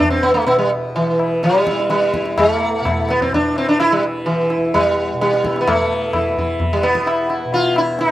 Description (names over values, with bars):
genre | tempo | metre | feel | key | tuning
indian classical, Hindustani | 127 BPM | 7/4 | straight | E raga bhairavi | A4 = 440 Hz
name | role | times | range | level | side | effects
sitar | melody | 0.0-8.1 s | E3 to F4 | -16 LUFS | equal | slapback echo
tanpura | drone | 0.0-8.1 s | E2 to E3 | -26 LUFS | equal | stereo widening
tabla | percussion | 0.0-8.1 s | none | -23 LUFS | left 2 dB | none
room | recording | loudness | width
light reverb | recorded outdoors, with no room sound | -15 LUFS | side -14 dB against mid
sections
0.0-8.1 A section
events
speeding up 0.0-8.1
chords
none